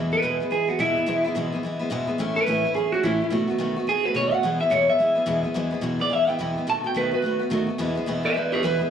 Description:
rock; 214 BPM; 4/4; swing 62% on 8ths; E major; A4 = 440 Hz
picked steel-string acoustic guitar; accompaniment; 0.0-8.9 s; E2 to F#4; -25 LUFS; equal; plate reverb
electric guitar through a small old amp; melody; 0.1-8.8 s; E4 to A5; -22 LUFS; right 1 dB; phaser, plate reverb, slapback echo, tape echo
wet club ambience, RT60 0.5 s; live gig heard through the venue's PA, club reverb; -21 LUFS; side -8 dB against mid
0.0-8.9 A section
clean electric guitar solo 0.0-8.9
0.0 E; 2.2 A; 3.3 B7; 4.4 E; 6.7 B7; 7.8 E

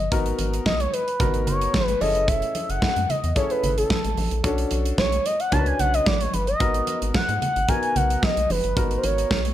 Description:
early-eighties boogie funk; 111 BPM; 4/4; straight; G# phrygian; A4 = 440 Hz
expressive portamento lead; melody; 0.0-9.5 s; A4 to A5; -24 LUFS; equal; chorus
rubbery square bass; bass; 0.0-9.5 s; F#1 to G#2; -26 LUFS; equal
warm concert grand piano; accompaniment; 0.1-9.4 s; B3 to B4; -29 LUFS; left 3 dB
modern studio drum kit; drums; 0.1-9.5 s; hi-hat, kick drum, snare drum; -26 LUFS; equal; gated reverb
congas; percussion; 0.4-9.4 s; -32 LUFS; right 3 dB
small room ambience; -20 LUFS; side -12 dB against mid
0.0-9.5 A section
analog synth lead solo 0.0-9.5
0.0 G#m9; 2.0 F#m9; 4.4 Bm9; 6.6 G#m9

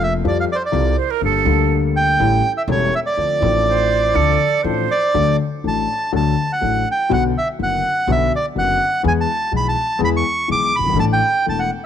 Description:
tango; 123 BPM; 4/4; rubato; D minor, D major from 5.1 s; A4 = 440 Hz
bandoneon; melody; 0.0-11.7 s; C5 to D6; -18 LUFS; right 2 dB
dark baby grand piano; accompaniment; 0.0-11.7 s; E1 to A4; -20 LUFS; left 8 dB
upright bass; bass; 0.0-11.7 s; E1 to F2; -22 LUFS; right 3 dB
bright silver concert flute; second line; 1.0-5.1 s; A4 to C5; -22 LUFS; right 14 dB
light reverb, small room ambience; 1960s-style stereo with parts hard left and right; -15 LUFS; side -9 dB against mid
0.0-5.1 A section; 5.1-11.9 B section
0.2 Fadd9; 1.2 Gmadd9; 2.2 A7; 3.2 Dm7; 5.1 D; 7.1 Bm; 9.0 E; 11.0 Asus4

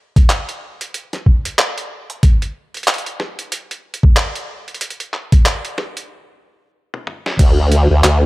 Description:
glitch hop; 93 BPM; 4/4; swing 59% on 16ths; A4 = 440 Hz
boom bap sampler-style drum kit; drums; 0.2-8.2 s; crash cymbal, handclaps, hi-hat, snare drum, toms; -20 LUFS; equal; high-pass filter on snare, high-pass filter on hats, high-pass filter on toms, high-pass filter on cymbals
electronic kick drum; drums; 0.2-7.5 s; -11 LUFS; equal
formant-sweep wobble bass; bass; 7.4-8.3 s; D2; -11 LUFS; equal; chorus, overdrive
digital ambience; -14 LUFS; side -20 dB against mid
0.0-7.4 A section
build-up 0.0-7.4; stop 6.1-7.4; drum fill 6.9-7.4

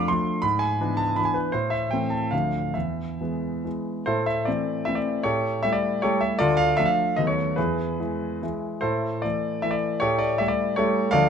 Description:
classical, romantic triple-time dance for piano with dotted rhythms; 126-175 BPM; 3/4; rubato; A minor; A4 = 444 Hz
clear grand piano; solo; 0.0-11.3 s; D2 to C6; -22 LUFS; equal
moderate recital hall reverb, RT60 1.3 s; close, detailed microphones; -22 LUFS; side -7 dB against mid
0.0-4.1 A section; 4.1-11.3 B section
0.4 E7/G#; 1.5 Am; 2.3 Dm; 2.7 E; 4.1 Am; 5.3 A7; 6.4 Dm; 7.2 B7/D#; 7.6 E; 8.8 Am; 10.0 A7

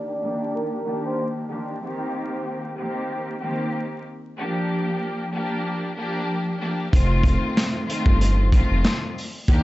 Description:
hip hop, boom-bap hip-hop; 94 BPM; 4/4; swing 56% on 16ths; A4 = 439 Hz
vibraphone with soft mallets; melody; 0.0-1.2 s; Bb4 to D6; -29 LUFS; equal; high-pass filter, low-pass filter, digital delay
warm studio string section; accompaniment; 0.0-9.6 s; Eb3 to G4; -26 LUFS; equal; cassette tape, high-pass filter, low-pass filter
smooth gliding synth bass; bass; 6.9-9.6 s; F1 to Eb2; -20 LUFS; equal
crunchy breakbeat drum kit; drums; 6.9-9.6 s; handclaps, hi-hat, kick drum, snare drum; -20 LUFS; equal
small room ambience; vinyl crackle, nothing above 7.9 kHz; -21 LUFS; side -17 dB against mid
0.0-6.9 A section; 6.9-9.6 B section
filter sweep 0.0-6.9
0.0 Ebmaj7; 1.8 Cm7; 4.4 Gm7; 6.9 F7

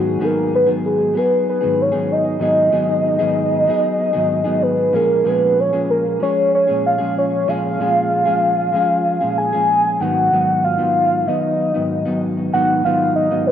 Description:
indie pop; 95 BPM; 4/4; straight; G# dorian; A4 = 441 Hz
soft octave-layered synth lead; melody; 0.0-13.5 s; F#4 to G#5; -16 LUFS; equal; lush chorus, analog delay
mellow electric guitar; accompaniment; 0.0-13.5 s; G#2 to G#4; -20 LUFS; left 1 dB; wide subtle chorus, vibrato effect, analog delay
moderate spring reverb, RT60 2.6 s; echo-heavy mix, nothing above 10.5 kHz; -15 LUFS; side -9 dB against mid
0.0-13.5 A section
0.0 G#m7; 4.9 A#m7; 10.0 G#m7

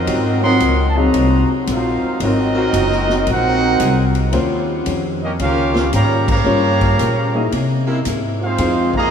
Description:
jazz, big band swing; 113 BPM; 4/4; swing 66% on 8ths; A4 = 440 Hz
clear trumpet section; melody; 0.0-9.1 s; C4 to C6; -20 LUFS; right 1 dB
bright trombone section; second line; 0.0-9.1 s; C3 to Gb4; -22 LUFS; right 3 dB
warm upright piano; accompaniment; 0.0-9.1 s; Gb3 to G5; -23 LUFS; left 3 dB
upright bass; bass; 0.0-9.1 s; Gb1 to C3; -19 LUFS; equal
vintage hollow-body jazz guitar; accompaniment; 0.1-9.0 s; Ab2 to C5; -25 LUFS; left 3 dB
clear saxophone section; sustained chords; 0.1-8.0 s; C3 to Ab4; -26 LUFS; equal
swinging big-band drum kit; drums; 0.1-9.0 s; crash cymbal, hi-hat, kick drum, ride cymbal, snare drum; -27 LUFS; equal
wet cathedral reverb, RT60 4.9 s; in a vast, echoing space, small room reverb; -14 LUFS; side -7 dB against mid
0.0-9.1 A section
band accent 6.2
0.1 Ab13; 4.3 Eb13; 6.5 Gm7b5; 7.5 C7b13; 8.6 Fm7

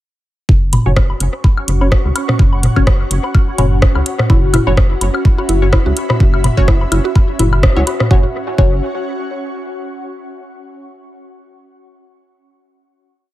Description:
minimal techno; 126 BPM; 4/4; swing 56% on 16ths; A4 = 441 Hz
rubbery square bass; bass; 0.5-8.8 s; F#1 to C#2; -16 LUFS; equal; sidechain pumping
electronic kick drum; drums; 0.5-8.7 s; -11 LUFS; equal; studio reverb
ethereal airy pad; texture; 0.8-10.0 s; C#4 to C#6; -23 LUFS; left 1 dB; ensemble chorus, built-in reverb, sidechain pumping
garage drum kit; drums; 0.7-8.1 s; hi-hat, rim click; -20 LUFS; equal; studio reverb, dub echo
electronic toms and woodblock; percussion; 0.7-8.1 s; -19 LUFS; equal; studio reverb, dub echo
filtered dub chord stab; stabs; 0.9-8.8 s; C#4 to C#5; -24 LUFS; left 2 dB; phaser, dub echo
mallet-like synth pluck; riff; 4.3-8.8 s; E4 to F#4; -22 LUFS; right 1 dB; chorus, sidechain pumping, dub echo
digital ambience; echo-heavy mix; -11 LUFS; side -15 dB against mid
0.5-8.1 groove; 8.1-10.0 final chord
band accent 7.6
0.5 F#5

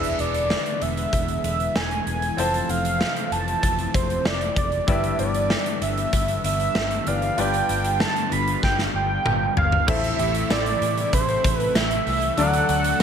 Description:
1980s-style pop; 96 BPM; 4/4; straight; A4 = 440 Hz
octave-doubled lead; melody; 0.0-13.0 s; C5 to B5; -24 LUFS; right 2 dB; chorus
clear baby grand piano; accompaniment; 0.0-13.0 s; G2 to E5; -30 LUFS; left 6 dB
lush unison pad; sustained chords; 0.0-13.0 s; C3 to A4; -30 LUFS; equal; chorus
vintage muted fingered electric bass; bass; 0.0-13.0 s; E1 to A2; -28 LUFS; equal
big rock drum kit; drums; 0.0-13.0 s; crash cymbal, hi-hat, kick drum, snare drum, tambourine, toms; -25 LUFS; equal; gated reverb
funky polysynth comp; stabs; 9.9-10.8 s; C4 to A4; -33 LUFS; equal; chorus, tape echo
light reverb, studio ambience; -20 LUFS; side -8 dB against mid
0.0-9.9 A section; 9.9-13.0 B section
drum fill 8.6-9.9
0.0 E7; 2.4 Fmaj7; 4.9 Em7/G; 7.4 G7; 9.9 Am; 12.4 D

